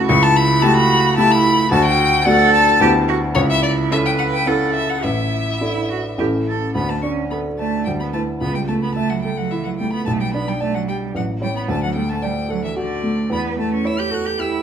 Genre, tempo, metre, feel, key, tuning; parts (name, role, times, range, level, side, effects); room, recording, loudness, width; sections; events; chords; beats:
quick classical-period movement for piano trio; 109 BPM; 3/4; rubato; A4 = 440 Hz
clear cello; second line; 0.0-14.6 s; D3 to B4; -22 LUFS; right 7 dB
warm baby grand piano; accompaniment; 0.0-14.6 s; A1 to E5; -19 LUFS; equal
rich violin; melody; 0.1-14.6 s; C#5 to G6; -20 LUFS; left 5 dB
moderate recital hall reverb, RT60 1.8 s; close, detailed microphones; -16 LUFS; side -8 dB against mid
0.0-6.7 A section; 6.7-14.6 B section
0.1 A7/C#; 1.7 D; 2.8 Em7/D; 3.4 A/C#; 5.0 Asus4; 6.2 A; 6.7 D5; 7.9 E5/D; 8.4 A/C#; 10.1 G/B; 11.2 A; 11.7 D; 13.3 A7/E
| 0.09 0.63 1.18 | 1.72 2.26 2.81 | 3.36 3.91 4.47 | 5.03 5.61 6.18 | 6.75 7.30 7.86 | 8.41 8.96 9.51 | 10.06 10.61 11.15 | 11.70 12.23 12.77 | 13.31 13.85 14.39